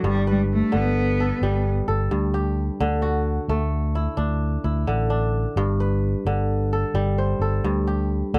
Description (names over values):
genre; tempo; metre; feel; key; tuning
west african traditional, West African string and xylophone music; 87 BPM (dotted quarters); 12/8; straight; unclear; A4 = 441 Hz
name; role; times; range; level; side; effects
clear cello; melody; 0.0-1.7 s; G3 to B3; -26 LUFS; equal; none
kora; arpeggios; 0.0-8.4 s; G2 to C5; -27 LUFS; equal; none
fingered electric bass; bass; 0.0-8.4 s; G1 to D2; -26 LUFS; equal; none
room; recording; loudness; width
light reverb; dark, warm production; -23 LUFS; mono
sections
0.0-8.3 A section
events
none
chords
0.0 G; 2.8 D; 5.6 G